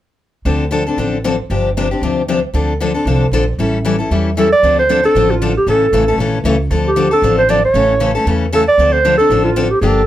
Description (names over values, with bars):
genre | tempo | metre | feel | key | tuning
acoustic string swing (jazz manouche) | 231 BPM | 4/4 | swing 56% on 8ths | D minor | A4 = 438 Hz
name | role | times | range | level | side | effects
picked steel-string acoustic guitar | accompaniment | 0.5-10.0 s | C3 to A4 | -16 LUFS | left 3 dB | none
upright bass | bass | 0.5-10.1 s | G1 to E2 | -18 LUFS | right 1 dB | none
mellow clarinet | melody | 4.4-10.1 s | F4 to D5 | -12 LUFS | right 2 dB | none
room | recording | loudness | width
moderate small room reverb, RT60 0.5 s | none | -12 LUFS | side -12 dB against mid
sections
0.5-4.6 A section; 4.6-10.1 B section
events
none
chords
0.5 Dm7; 1.5 G7sus4; 2.5 Dm7; 3.6 A7; 4.6 Dm7; 5.7 A; 6.7 Dm7; 7.7 A; 8.8 Dm7